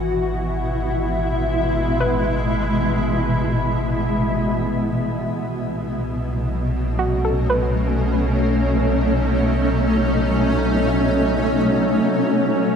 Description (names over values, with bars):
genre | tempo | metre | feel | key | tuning
ambient | free time | none | none | unclear | A4 = 440 Hz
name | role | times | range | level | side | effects
shimmering ambient pad | sustained chords | 0.0-12.8 s | B2 to F#4 | -19 LUFS | equal | chorus, built-in reverb, shimmer reverb
warm sub bass | bass | 0.0-12.8 s | G#1 to B1 | -25 LUFS | equal | none
soft round pluck | arpeggios | 2.0-10.7 s | F#4 to B4 | -26 LUFS | equal | chorus, tape echo, shimmer reverb
overtone-sweeping drone | drone | 12.3-12.8 s | F#3 | -32 LUFS | right 6 dB | none
room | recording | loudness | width
wet concert hall reverb, RT60 2.0 s, digital ambience | none | -18 LUFS | side -7 dB against mid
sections
0.0-12.0 A section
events
none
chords
0.0 E/G#; 5.3 B9; 12.0 F#m7